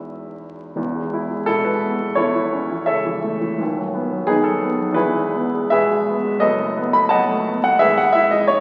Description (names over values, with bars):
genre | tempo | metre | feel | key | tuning
classical, romantic character piece for solo piano | 85 BPM | 2/4 | uneven beats, rubato | E major | A4 = 440 Hz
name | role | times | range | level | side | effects
warm baby grand piano | solo | 0.0-8.6 s | D#1 to E6 | -20 LUFS | equal | none
room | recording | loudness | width
wet scoring stage reverb, RT60 2.0 s | very old 78 rpm record, vinyl crackle | -19 LUFS | mono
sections
0.8-8.6 A section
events
none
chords
0.0 E; 2.2 A/E; 3.6 B/D#; 5.0 E; 6.4 B7/F#; 7.8 E/G#